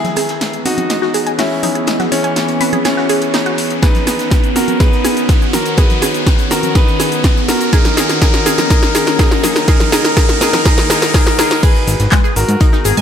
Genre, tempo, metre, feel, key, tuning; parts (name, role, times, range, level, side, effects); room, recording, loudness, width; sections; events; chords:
progressive house; 123 BPM; 4/4; straight; G# minor; A4 = 439 Hz
bright concert grand piano; melody; 0.0-13.0 s; E3 to B4; -18 LUFS; left 1 dB; tape echo
evolving wavetable pad; sustained chords; 0.0-13.0 s; D#3 to G#4; -20 LUFS; left 1 dB; chorus, built-in reverb, sidechain pumping
deep house drum kit; drums; 0.0-13.0 s; crash cymbal, handclaps, hi-hat, shaker, snare drum; -18 LUFS; equal; overdrive
raw garage drum kit; drums; 0.0-13.0 s; hi-hat, snare drum; -30 LUFS; right 3 dB
congas; percussion; 0.0-10.6 s; -26 LUFS; right 3 dB; sidechain pumping on perc
riser; sound effects; 0.1-11.6 s; -22 LUFS; equal
glassy wavetable pluck; arpeggios; 0.2-13.0 s; G#3 to G#5; -21 LUFS; right 1 dB; chorus, sidechain pumping, ping-pong delay
electronic kick drum; drums; 3.8-12.7 s; -12 LUFS; equal
fat analog bass; bass; 11.9-13.0 s; G#1 to G#2; -14 LUFS; equal; sidechain pumping
light reverb, digital ambience; -11 LUFS; side -8 dB against mid
0.0-11.6 A section; 11.6-13.0 B section
build-up 0.0-11.6; drum fill 0.0-11.6; filter sweep on synth arpeggio sound 0.0-11.6; riser 0.1-11.6; drop 11.6-13.0
0.0 C#m7; 3.8 Badd9; 7.7 D#m7; 11.6 G#m